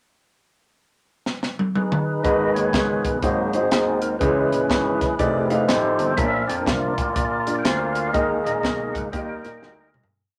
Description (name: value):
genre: uptempo gospel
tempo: 122 BPM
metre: 4/4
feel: swing 63% on 8ths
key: unclear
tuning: A4 = 440 Hz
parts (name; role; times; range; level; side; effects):
- crisp fusion drum kit; drums; 1.3-10.1 s; hi-hat, kick drum, snare drum, toms; -27 LUFS; equal; none
- tonewheel organ; sustained chords; 1.8-10.1 s; D#3 to G5; -25 LUFS; equal; fast rotary speaker, overdrive
- warm upright piano; accompaniment; 2.2-10.0 s; G#2 to F5; -28 LUFS; equal; none
- warm grand piano; bass; 2.2-10.0 s; F1 to A#2; -31 LUFS; equal; none
room: moderate club reverb, RT60 0.6 s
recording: none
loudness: -22 LUFS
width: mono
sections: 0.3-2.2 pickup bar; 2.2-10.1 verse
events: drum fill 1.3-2.2, 9.6-10.1; tonewheel organ solo 2.2-10.1; fade-out 8.1-10.1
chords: 0.3 G#m; 3.2 G#7; 4.2 C#m; 5.2 F13; 6.2 A#; 8.1 D#sus4; 9.1 D#